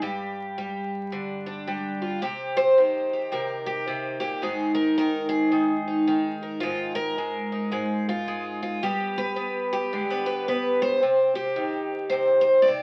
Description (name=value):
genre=folk, solo fingerstyle acoustic guitar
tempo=109 BPM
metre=4/4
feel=swing 62% on 8ths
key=C minor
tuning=A4 = 443 Hz
part: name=picked twelve-string acoustic guitar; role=solo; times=0.0-12.8 s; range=G2 to D5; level=-25 LUFS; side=equal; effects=none
room=moderate club ambience, RT60 0.5 s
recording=very old 78 rpm record, vinyl crackle, nothing above 10.6 kHz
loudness=-25 LUFS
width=mono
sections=0.0-2.2 A section; 2.2-12.8 B section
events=none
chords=0.0 G5; 2.2 Cm7; 4.4 Absus2; 6.6 Fm7/Ab; 8.8 G; 11.0 Cm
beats=| 0.03 0.57 1.12 1.67 | 2.22 2.77 3.32 3.87 | 4.42 4.97 5.52 6.07 | 6.62 7.17 7.72 8.27 | 8.82 9.37 9.92 10.47 | 11.02 11.57 12.12 12.66